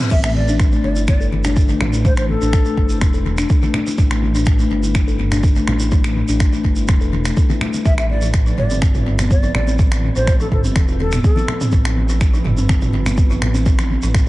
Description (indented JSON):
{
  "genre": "afro house",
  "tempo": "124 BPM",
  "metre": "4/4",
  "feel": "straight",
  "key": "A minor",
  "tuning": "A4 = 440 Hz",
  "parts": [
    { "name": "kalimba", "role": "arpeggios", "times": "0.0-14.1 s", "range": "F3 to A4", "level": "-22 LUFS", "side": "left 2 dB", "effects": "sidechain pumping, dub echo" },
    { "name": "deep house drum kit", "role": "drums", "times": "0.0-14.2 s", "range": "crash cymbal, finger snaps, toms", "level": "-25 LUFS", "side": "right 1 dB", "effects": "dub echo" },
    { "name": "congas", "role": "percussion", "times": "0.0-14.2 s", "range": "none", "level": "-27 LUFS", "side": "left 2 dB", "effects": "none" },
    { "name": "breathy mellow jazz flute", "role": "melody", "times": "0.1-3.0, 7.9-11.6 s", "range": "A4 to E5", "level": "-26 LUFS", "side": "left 1 dB", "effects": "dub echo" },
    { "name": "dark detuned saw bass", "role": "bass", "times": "0.1-14.3 s", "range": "E1 to A1", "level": "-20 LUFS", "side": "equal", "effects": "sidechain pumping" },
    { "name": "electronic kick drum", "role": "drums", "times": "0.1-14.2 s", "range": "none", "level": "-16 LUFS", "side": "equal", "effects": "none" },
    { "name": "shekere", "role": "percussion", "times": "0.1-14.3 s", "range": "none", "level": "-34 LUFS", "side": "right 3 dB", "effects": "dub echo" }
  ],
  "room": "light reverb, small room ambience",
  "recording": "echo-heavy mix, nothing above 10.8 kHz",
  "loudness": "-14 LUFS",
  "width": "side -18 dB against mid",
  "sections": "0.0-14.3 A section",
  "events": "none",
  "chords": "0.1 A5; 7.9 Fadd9",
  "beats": "| 0.11 0.59 1.08 1.56 | 2.05 2.53 3.02 3.50 | 3.98 4.47 4.95 5.43 | 5.92 6.40 6.89 7.37 | 7.85 8.34 8.82 9.30 | 9.79 10.27 10.76 11.24 | 11.72 12.21 12.69 13.18 | 13.66 14.14"
}